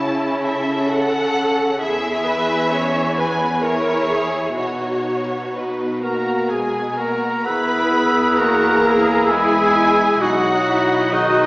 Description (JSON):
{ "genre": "cinematic, emotional film score for orchestra", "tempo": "64 BPM", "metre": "3/4", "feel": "uneven beats, rubato", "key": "unclear", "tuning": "A4 = 441 Hz", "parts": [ { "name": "rich studio violin section", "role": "melody", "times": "0.0-11.5 s", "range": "B4 to B5", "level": "-24 LUFS", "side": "equal", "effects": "none" }, { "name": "rich studio violin section", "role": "second line", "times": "0.0-11.5 s", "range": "B3 to B4", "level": "-24 LUFS", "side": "equal", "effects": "none" }, { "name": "warm studio viola section", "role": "accompaniment", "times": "0.0-11.5 s", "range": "E4 to D#5", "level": "-22 LUFS", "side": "equal", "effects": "none" }, { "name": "rich studio cello section", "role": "bass", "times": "0.0-11.5 s", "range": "E2 to G#4", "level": "-24 LUFS", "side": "equal", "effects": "none" }, { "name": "warm oboe", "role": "second line", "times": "6.0-11.5 s", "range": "D#4 to B4", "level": "-22 LUFS", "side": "equal", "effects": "none" }, { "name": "mellow French horn section", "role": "sustained chords", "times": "6.0-11.5 s", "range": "D#3 to B3", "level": "-23 LUFS", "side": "equal", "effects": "none" }, { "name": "silver concert flute", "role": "second line", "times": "7.4-11.5 s", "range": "D#6 to F#6", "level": "-21 LUFS", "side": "equal", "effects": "none" }, { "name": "warm clarinet", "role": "second line", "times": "7.4-11.5 s", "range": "D#4 to G#4", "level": "-24 LUFS", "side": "equal", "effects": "none" }, { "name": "rich studio double bass section", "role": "bass", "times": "7.4-11.5 s", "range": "B1 to E2", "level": "-30 LUFS", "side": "equal", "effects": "none" } ], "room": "wet scoring stage reverb, RT60 1.8 s", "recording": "small speaker sound", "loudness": "-16 LUFS", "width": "side -22 dB against mid", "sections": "0.0-7.5 A section; 7.5-11.5 B section", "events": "none", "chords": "0.0 A6/C#; 1.8 E; 4.6 Badd9; 7.5 E; 10.2 B" }